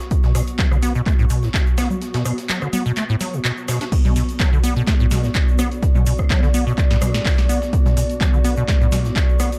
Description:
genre	acid house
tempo	126 BPM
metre	4/4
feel	swing 54% on 16ths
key	B minor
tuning	A4 = 438 Hz
part	breakbeat sampler-style drum kit	drums	0.0-9.6 s	hi-hat, snare drum	-39 LUFS	equal	none
part	granular cloud pad	texture	0.0-9.6 s	B3 to C#6	-32 LUFS	equal	built-in reverb, sidechain pumping
part	electronic kick drum	drums	0.1-9.3 s	none	-20 LUFS	equal	none
part	egg shaker	percussion	0.1-9.6 s	none	-40 LUFS	equal	none
part	deep acid bass	riff	0.2-9.5 s	A2 to D4	-24 LUFS	equal	tube saturation, subtle chorus, sidechain pumping, digital delay
part	booming analog drum machine	drums	0.3-9.5 s	congas, crash cymbal, handclaps, hi-hat, rim click, snare drum	-28 LUFS	equal	none
part	dark analog pad	sustained chords	4.4-9.6 s	B3 to D5	-32 LUFS	equal	chorus, sidechain pumping
room	digital ambience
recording	dark, warm production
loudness	-18 LUFS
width	mono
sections	0.0-3.9 A section; 3.9-9.6 B section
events	break 2.0-3.9; drop 3.9-9.6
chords	0.0 B5; 3.9 Bm7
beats	| 0.11 0.59 1.06 1.54 | 2.02 2.49 2.97 3.44 | 3.92 4.40 4.87 5.35 | 5.83 6.30 6.78 7.25 | 7.73 8.21 8.68 9.16

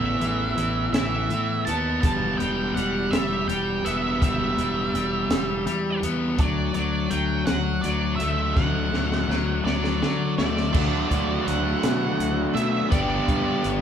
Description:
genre	indie rock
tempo	55 BPM (dotted quarters)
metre	6/8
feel	straight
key	unclear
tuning	A4 = 440 Hz
part	octave-fuzz lead guitar	melody	0.0-13.7 s	D5 to A5	-28 LUFS	right 4 dB	distortion
part	biting overdriven guitar	riff	0.0-13.8 s	E3 to G4	-26 LUFS	left 3 dB	none
part	fuzz fingered electric bass	bass	0.0-13.8 s	E1 to D3	-28 LUFS	equal	overdrive
part	compact cocktail drum kit	drums	0.2-13.8 s	crash cymbal, hi-hat, kick drum, snare drum	-27 LUFS	equal	none
part	overdriven electric guitar	riff	10.7-13.8 s	F#3 to G4	-27 LUFS	right 5 dB	none
room	moderate large studio reverb, RT60 1.1 s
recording	band playing live in one room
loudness	-21 LUFS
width	side -8 dB against mid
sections	0.0-10.7 A section; 10.7-13.8 B section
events	drum fill 8.6-10.7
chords	0.0 Asus2; 2.0 Em; 6.4 D; 10.7 D6; 12.9 G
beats	0.94 | 2.04 3.13 | 4.22 5.30 | 6.39 7.48 | 8.57 9.66 | 10.75 11.83 | 12.92

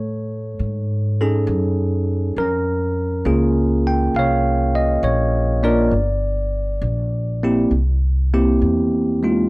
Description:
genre	jazz ballad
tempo	67 BPM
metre	4/4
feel	swing 67% on 8ths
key	unclear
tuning	A4 = 439 Hz
part	bell-like tine electric piano	accompaniment	0.0-9.5 s	Ab3 to G5	-19 LUFS	equal	none
part	upright bass	bass	0.0-9.5 s	G1 to A2	-20 LUFS	equal	none
room	light reverb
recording	none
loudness	-16 LUFS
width	side -23 dB against mid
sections	0.0-9.5 A section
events	none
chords	0.0 B13 (rootless); 2.4 Bbm7; 5.9 Gm; 7.7 C7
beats	0.60 1.48 | 2.36 3.25 4.14 5.03 | 5.92 6.82 7.72 8.62

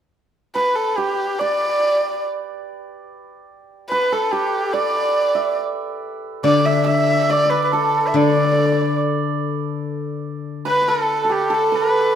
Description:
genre	chinese traditional, Chinese chamber ensemble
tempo	71 BPM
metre	2/4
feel	rubato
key	D zhi mode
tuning	A4 = 440 Hz
part	dark erhu	melody	0.6-12.2 s	G4 to E5	-19 LUFS	left 1 dB	none
part	hammered dulcimer	second line	0.6-12.2 s	G4 to E5	-22 LUFS	right 4 dB	none
part	steel-string zither	accompaniment	6.4-10.7 s	D3	-21 LUFS	left 6 dB	none
room	moderate scoring stage reverb, RT60 1.9 s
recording	none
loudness	-17 LUFS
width	side -9 dB against mid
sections	0.0-12.2 A section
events	none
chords	none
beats	0.54 | 1.40 2.24 | 3.08 3.90 | 4.73 5.58 | 6.45 7.31 | 8.15 8.99 | 9.82 10.66 | 11.51

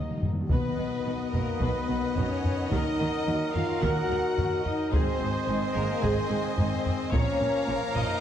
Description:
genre	cinematic, epic orchestral film score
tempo	109 BPM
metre	4/4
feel	straight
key	Eb minor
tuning	A4 = 440 Hz
part	warm symphonic violin section	melody	0.0-8.2 s	Bb4 to Gb5	-37 LUFS	left 3 dB	none
part	warm symphonic violin section	second line	0.0-8.2 s	Bb3 to Bb5	-38 LUFS	left 3 dB	none
part	rich symphonic viola section	accompaniment	0.0-8.0 s	Eb4 to D#5	-36 LUFS	right 2 dB	none
part	clear trombone section	sustained chords	0.0-8.2 s	D#3 to Bb3	-38 LUFS	right 3 dB	none
part	dark French horn section	sustained chords	0.0-8.2 s	Bb3 to Gb4	-31 LUFS	left 4 dB	none
part	mellow trumpet	stabs	0.0-8.2 s	Bb4 to Eb5	-35 LUFS	right 2 dB	none
part	warm symphonic cello section	bass	0.0-8.0 s	Ab2 to Eb3	-35 LUFS	right 2 dB	none
part	warm symphonic double bass section	bass	0.0-8.0 s	Ab1 to Eb2	-34 LUFS	right 2 dB	none
part	timpani	percussion	0.0-0.5 s	Eb3	-34 LUFS	equal	none
part	taiko ensemble	drums	0.2-8.2 s	none	-30 LUFS	equal	none
room	wet scoring stage reverb, RT60 1.9 s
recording	dark, warm production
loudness	-25 LUFS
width	side -10 dB against mid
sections	0.5-8.2 A section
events	timpani fill 0.0-0.5; drum fill 0.0-0.5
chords	0.0 Ebm; 0.5 B; 2.7 Ebm; 4.9 Ab; 7.1 Bbm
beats	| 0.51 1.06 1.61 2.16 | 2.71 3.27 3.82 4.37 | 4.92 5.48 6.03 6.58 | 7.13 7.69

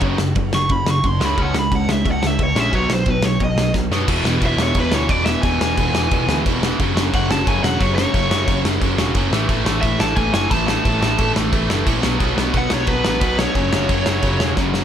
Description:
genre	punk rock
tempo	177 BPM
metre	4/4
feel	straight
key	unclear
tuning	A4 = 439 Hz
part	crunchy overdriven guitar	riff	0.0-14.8 s	E2 to C#4	-20 LUFS	equal	none
part	overdriven picked electric bass	bass	0.0-14.8 s	E1 to F#2	-23 LUFS	equal	none
part	loose indie drum kit	drums	0.0-14.8 s	crash cymbal, kick drum, ride cymbal, snare drum	-21 LUFS	equal	none
part	biting lead guitar	melody	0.5-14.5 s	B4 to C#6	-22 LUFS	equal	overdrive
room	little or no reverb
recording	none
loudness	-16 LUFS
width	side -9 dB against mid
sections	0.0-4.1 A section; 4.1-14.8 B section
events	lead electric guitar solo 0.0-4.1; drum fill 3.7-4.1, 14.6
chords	0.0 F#5; 1.4 C#5; 2.7 B; 4.1 E; 6.8 F#5; 9.3 A5; 12.0 B5; 13.6 F#5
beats	| 0.02 0.36 0.70 1.04 | 1.38 1.72 2.05 2.39 | 2.73 3.07 3.41 3.75 | 4.08 4.42 4.76 5.10 | 5.44 5.77 6.11 6.45 | 6.79 7.12 7.46 7.80 | 8.14 8.48 8.81 9.15 | 9.49 9.83 10.17 10.51 | 10.84 11.18 11.52 11.86 | 12.20 12.53 12.87 13.21 | 13.55 13.89 14.23 14.57

